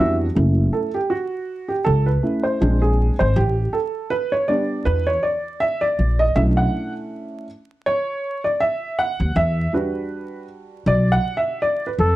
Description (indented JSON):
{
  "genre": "hip hop, jazz-hop",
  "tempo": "80 BPM",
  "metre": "4/4",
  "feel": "swing 57% on 16ths",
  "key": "E dorian",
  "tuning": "A4 = 441 Hz",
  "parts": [
    { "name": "breathy flugelhorn", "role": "melody", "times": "0.0-0.2, 12.0-12.2 s", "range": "A4 to E5", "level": "-20 LUFS", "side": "equal", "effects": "none" },
    { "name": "dark upright piano", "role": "accompaniment", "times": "0.0-12.2 s", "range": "E3 to F#5", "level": "-21 LUFS", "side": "right 1 dB", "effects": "none" },
    { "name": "upright bass", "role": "bass", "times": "0.0-12.2 s", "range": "F#1 to F2", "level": "-19 LUFS", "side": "equal", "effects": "none" }
  ],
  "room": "moderate studio reverb, RT60 0.6 s",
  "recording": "dark, warm production, vinyl crackle",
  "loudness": "-18 LUFS",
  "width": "side -16 dB against mid",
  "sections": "0.4-12.2 A section",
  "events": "upright piano solo 0.4-12.2",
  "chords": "0.4 F#m7; 2.6 A#9; 3.4 A9sus4; 6.4 Bm11 (rootless); 9.4 Em9"
}